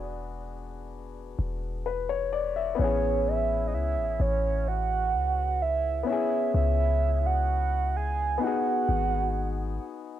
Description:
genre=contemporary R&B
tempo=64 BPM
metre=4/4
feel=straight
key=C# minor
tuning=A4 = 440 Hz
part: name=soft octave-layered synth lead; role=melody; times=0.0-9.8 s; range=C#5 to G#5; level=-28 LUFS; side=right 6 dB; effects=chorus, phaser
part: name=warm concert grand piano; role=accompaniment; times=0.0-10.2 s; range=B3 to E5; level=-32 LUFS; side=left 9 dB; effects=none
part: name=warm 808-style bass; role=bass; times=0.0-9.8 s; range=E1 to C#2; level=-29 LUFS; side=left 1 dB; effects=none
room=light reverb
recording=home recording on cassette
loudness=-25 LUFS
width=side -11 dB against mid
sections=0.0-10.2 A section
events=none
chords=0.0 E7; 2.8 Amaj7; 6.1 C#m7; 8.4 G#m7

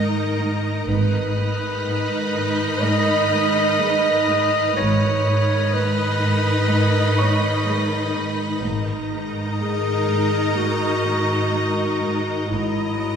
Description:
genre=cinematic, suspense film score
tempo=62 BPM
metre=4/4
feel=straight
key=G# minor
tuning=A4 = 440 Hz
part: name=clear symphonic violin section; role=second line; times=0.0-13.2 s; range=D#5 to B5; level=-27 LUFS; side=equal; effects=none
part: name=warm clarinet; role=second line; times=0.0-13.2 s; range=D#4 to D#5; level=-23 LUFS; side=equal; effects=none
part: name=rich symphonic viola section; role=accompaniment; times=0.0-13.2 s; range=D#3 to D#5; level=-28 LUFS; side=equal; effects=none
part: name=evolving wavetable pad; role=sustained chords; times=0.0-13.2 s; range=D#4 to D#5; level=-28 LUFS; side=left 1 dB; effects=ensemble chorus, built-in reverb, phaser
part: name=clear symphonic cello section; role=riff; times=0.0-13.2 s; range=G#2 to G#3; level=-27 LUFS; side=right 1 dB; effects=none
part: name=rich symphonic cello section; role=bass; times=0.0-13.2 s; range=G#2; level=-25 LUFS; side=right 1 dB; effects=none
part: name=felt-muted upright piano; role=texture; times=0.0-13.2 s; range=B4 to A#6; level=-34 LUFS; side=right 1 dB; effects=none
part: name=rich symphonic double bass section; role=bass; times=0.9-13.2 s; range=G#1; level=-29 LUFS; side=equal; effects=none
part: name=warm symphonic violin section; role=texture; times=0.9-8.1 s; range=D#6 to F#6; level=-31 LUFS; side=left 3 dB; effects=none
room=wet scoring stage reverb, RT60 1.7 s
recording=recorded in a church or concert hall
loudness=-18 LUFS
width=side -7 dB against mid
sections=0.0-13.2 A section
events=none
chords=0.0 D#5/G#; 0.9 G#m; 8.6 D#m/G#

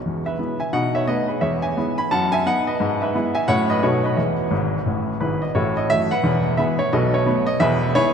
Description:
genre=jazz, stride piano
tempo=174 BPM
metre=4/4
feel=swing 61% on 8ths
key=E major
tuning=A4 = 438 Hz
part: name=warm baby grand piano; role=solo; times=0.1-8.1 s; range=E1 to B5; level=-18 LUFS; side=equal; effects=none
room=wet cathedral reverb, RT60 5.0 s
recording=recorded in a church or concert hall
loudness=-18 LUFS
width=side -7 dB against mid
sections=0.0-5.5 A section; 5.5-8.1 B section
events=grand piano fill 4.5-5.5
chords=0.0 E; 0.7 B7; 1.4 E; 2.1 B/F#; 2.8 E/G#; 3.5 F#m/A; 3.8 B7; 4.2 E; 5.5 A5; 6.2 E; 6.9 B5; 7.6 E

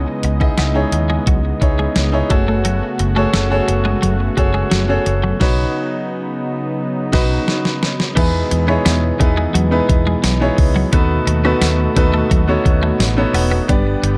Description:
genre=1980s-style pop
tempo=87 BPM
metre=4/4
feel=straight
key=unclear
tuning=A4 = 441 Hz
part: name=clear baby grand piano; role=accompaniment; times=0.0-14.2 s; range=B3 to D#5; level=-22 LUFS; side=equal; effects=none
part: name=brassy analog pad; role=sustained chords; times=0.0-14.2 s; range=B2 to D#5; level=-25 LUFS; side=equal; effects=chorus
part: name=vintage muted fingered electric bass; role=bass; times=0.0-14.2 s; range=E1 to E2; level=-21 LUFS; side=equal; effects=none
part: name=twelve-string electric guitar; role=riff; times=0.2-14.1 s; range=E3 to C#4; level=-26 LUFS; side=equal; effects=analog chorus, delay
part: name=clean 12-bit digital drum machine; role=drums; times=0.2-14.2 s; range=crash cymbal, hi-hat, kick drum, snare drum, tambourine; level=-20 LUFS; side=equal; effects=none
room=light reverb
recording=dark, warm production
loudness=-16 LUFS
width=mono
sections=0.0-8.2 A section; 8.2-14.2 B section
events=band accent 5.4-8.2; drum fill 6.8-8.2; grand piano fill 7.1-8.2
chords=0.0 C#madd9; 2.3 F#madd9; 5.4 Badd9; 8.2 Emaj7; 10.9 B7/D#

